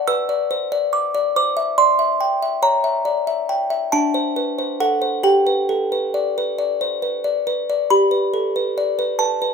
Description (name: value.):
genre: classical, lullaby for music box.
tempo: 46 BPM (dotted quarters).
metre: 6/8.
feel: straight.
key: G major.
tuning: A4 = 440 Hz.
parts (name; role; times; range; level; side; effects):
music box; solo; 0.0-9.5 s; D4 to E6; -17 LUFS; equal; none.
room: light reverb.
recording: band playing live in one room.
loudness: -17 LUFS.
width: side -6 dB against mid.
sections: 0.0-7.9 A section; 7.9-9.5 A section.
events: none.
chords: 0.1 Bmadd11; 1.4 Cadd9; 2.6 C#dim7; 3.9 D5; 5.2 G.